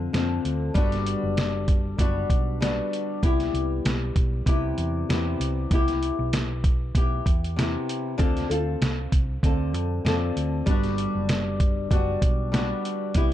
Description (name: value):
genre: indie pop, bedroom pop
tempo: 97 BPM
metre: 4/4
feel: swing 55% on 16ths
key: G major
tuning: A4 = 441 Hz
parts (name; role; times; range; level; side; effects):
- flamenco guitar; accompaniment; 0.0-13.3 s; C3 to A4; -27 LUFS; left 2 dB; wide subtle chorus, warbly pitch drift
- hollow-body short-scale fingered electric bass; bass; 0.0-13.3 s; F#1 to F2; -28 LUFS; equal; none
- lo-fi sampler-style drum kit; drums; 0.1-13.3 s; hi-hat, kick drum, snare drum; -24 LUFS; equal; none
room: digital ambience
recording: dark, warm production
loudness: -22 LUFS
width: side -12 dB against mid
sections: 0.0-13.3 A section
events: none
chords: 0.0 Dm7; 0.8 Gmaj7; 3.2 Cmaj7; 8.2 Dm7; 10.7 Gmaj7